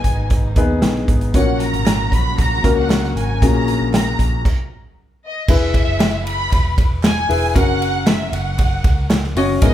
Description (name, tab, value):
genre	piano-driven pop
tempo	116 BPM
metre	4/4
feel	straight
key	unclear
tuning	A4 = 440 Hz
part	warm studio violin section	melody	0.0-9.7 s	D#5 to B5	-23 LUFS	equal	none
part	warm baby grand piano	accompaniment	0.0-9.7 s	G#2 to D#5	-21 LUFS	left 3 dB	none
part	warm studio string section	sustained chords	0.0-4.4 s	B2 to F#4	-31 LUFS	right 2 dB	none
part	vintage muted fingered electric bass	bass	0.0-9.7 s	E1 to D#2	-22 LUFS	equal	none
part	natural country drum kit	drums	0.0-9.7 s	crash cymbal, hi-hat, kick drum, ride cymbal, snare drum	-17 LUFS	equal	none
part	group handclap	percussion	1.9-9.2 s	none	-36 LUFS	right 6 dB	none
room	moderate large studio reverb, RT60 1.1 s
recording	band playing live in one room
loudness	-14 LUFS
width	side -12 dB against mid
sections	0.0-5.5 A section; 5.5-9.7 B section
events	stop 4.4-5.5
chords	0.0 G#m; 1.3 F#; 5.5 E; 7.6 F#